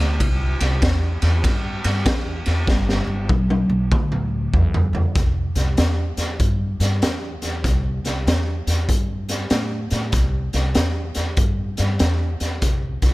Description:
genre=electric blues shuffle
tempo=96 BPM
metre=4/4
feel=swing 64% on 8ths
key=C major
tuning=A4 = 440 Hz
part: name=upright bass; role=bass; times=0.0-13.1 s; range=G1 to A2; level=-21 LUFS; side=equal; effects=none
part: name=raw garage drum kit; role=drums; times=0.2-13.1 s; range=hi-hat, kick drum, ride cymbal, snare drum, toms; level=-21 LUFS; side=equal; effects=none
room=little or no reverb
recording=none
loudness=-18 LUFS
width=side -20 dB against mid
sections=0.0-5.2 A section; 5.2-13.1 B section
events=drum fill 2.7-5.2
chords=none

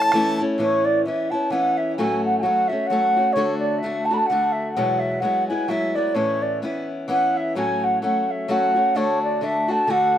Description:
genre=celtic folk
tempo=129 BPM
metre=3/4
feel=swing 57% on 8ths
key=A major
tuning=A4 = 440 Hz
part: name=baroque flute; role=melody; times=0.0-10.2 s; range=C#5 to B5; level=-20 LUFS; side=right 1 dB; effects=slapback echo
part: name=picked old ladder-braced acoustic guitar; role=accompaniment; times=0.0-10.2 s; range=E2 to F#4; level=-24 LUFS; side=left 2 dB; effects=slapback echo
room=little or no reverb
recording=recorded outdoors, with no room sound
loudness=-19 LUFS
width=side -10 dB against mid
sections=0.6-10.2 A section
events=none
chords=0.0 A; 0.6 Aadd9; 2.0 F#m/A; 3.4 D; 4.8 Eadd9; 6.2 Aadd9; 7.6 F#m/A; 9.0 D

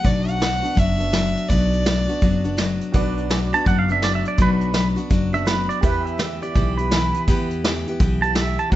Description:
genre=honky-tonk and classic country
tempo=166 BPM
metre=4/4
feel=swing 63% on 8ths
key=B minor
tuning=A4 = 441 Hz
part: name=rich fiddle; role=melody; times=0.0-2.6 s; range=D5 to F#5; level=-25 LUFS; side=right 1 dB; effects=none
part: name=picked steel-string acoustic guitar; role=accompaniment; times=0.0-8.8 s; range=F#2 to G4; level=-23 LUFS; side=left 2 dB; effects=none
part: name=upright bass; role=bass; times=0.0-8.8 s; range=F#1 to F#2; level=-24 LUFS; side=equal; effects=none
part: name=vintage brush drum kit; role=drums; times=0.0-8.8 s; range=hi-hat, kick drum, snare drum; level=-22 LUFS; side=equal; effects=none
part: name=honky-tonk upright piano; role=accompaniment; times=2.9-8.8 s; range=F#4 to E5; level=-33 LUFS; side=right 4 dB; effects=none
part: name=pedal steel guitar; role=second line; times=3.5-8.8 s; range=B4 to A5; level=-23 LUFS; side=right 4 dB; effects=slapback echo
room=light reverb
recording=nothing above 7.8 kHz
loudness=-18 LUFS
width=side -14 dB against mid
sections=0.0-2.9 A section; 2.9-8.8 B section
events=pedal steel guitar solo 2.9-8.8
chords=0.0 Bm; 5.8 Em

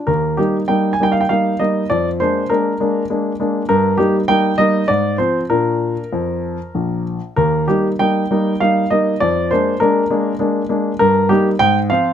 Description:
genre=classical-period piano sonatina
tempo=99 BPM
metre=3/4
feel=straight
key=Eb major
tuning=A4 = 436 Hz
part: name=warm grand piano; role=solo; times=0.0-12.1 s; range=Bb1 to Ab5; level=-14 LUFS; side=equal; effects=none
room=little or no reverb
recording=close, detailed microphones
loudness=-14 LUFS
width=side -9 dB against mid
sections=0.1-12.1 A section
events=none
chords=0.1 Eb; 1.9 Bb7/F; 3.7 Eb/G; 4.9 Fm/Ab; 5.5 Bb; 7.4 Eb; 9.2 Bb7/F; 11.0 Eb/G; 11.6 Fm/Ab

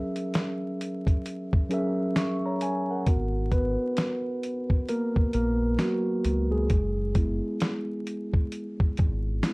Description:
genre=lo-fi hip hop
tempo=66 BPM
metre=4/4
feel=swing 60% on 16ths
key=G# minor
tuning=A4 = 441 Hz
part: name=mellow tine electric piano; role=accompaniment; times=0.0-9.5 s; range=F#3 to C#6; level=-28 LUFS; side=equal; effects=cassette tape, low-pass filter
part: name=dusty soul sampler-style drum kit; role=drums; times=0.2-9.5 s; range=hi-hat, kick drum, snare drum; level=-25 LUFS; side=equal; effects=none
part: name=deep dub fingered electric bass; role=bass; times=3.1-9.4 s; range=F#1 to C#2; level=-28 LUFS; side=equal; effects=none
room=moderate studio reverb, RT60 0.6 s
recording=dark, warm production, vinyl crackle, lossy compression artefacts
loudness=-24 LUFS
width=side -27 dB against mid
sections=0.0-3.1 A section; 3.1-9.5 B section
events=break 0.0-3.1; tine electric piano solo 3.1-9.5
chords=0.0 F#7; 3.1 G#m9; 6.7 F#9sus4

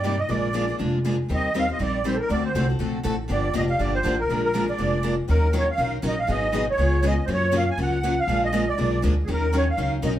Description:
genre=acoustic string swing (jazz manouche)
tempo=240 BPM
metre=4/4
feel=swing 55% on 8ths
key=Eb minor from 5.3 s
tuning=A4 = 439 Hz
part: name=musette accordion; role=melody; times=0.0-10.1 s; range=Ab4 to Ab5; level=-25 LUFS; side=right 1 dB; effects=none
part: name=picked steel-string acoustic guitar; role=accompaniment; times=0.0-10.1 s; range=C3 to C5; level=-28 LUFS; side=left 4 dB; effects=none
part: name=picked steel-string acoustic guitar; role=accompaniment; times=0.0-10.1 s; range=C3 to Bb4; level=-29 LUFS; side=right 1 dB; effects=none
part: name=upright bass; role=bass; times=0.0-10.2 s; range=F1 to G2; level=-25 LUFS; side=equal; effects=none
room=wet club reverb, RT60 0.8 s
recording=heard from further back in the room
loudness=-21 LUFS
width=side -12 dB against mid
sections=0.0-5.3 A section; 5.3-10.2 B section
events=none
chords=0.3 Bb7; 1.3 Eb6; 2.3 D7; 3.3 Gm9; 4.3 Bb7; 5.3 Ebm7; 6.3 Abm7; 6.8 Db7; 7.3 Gbmaj7; 8.3 Bb7; 9.3 Ebm7

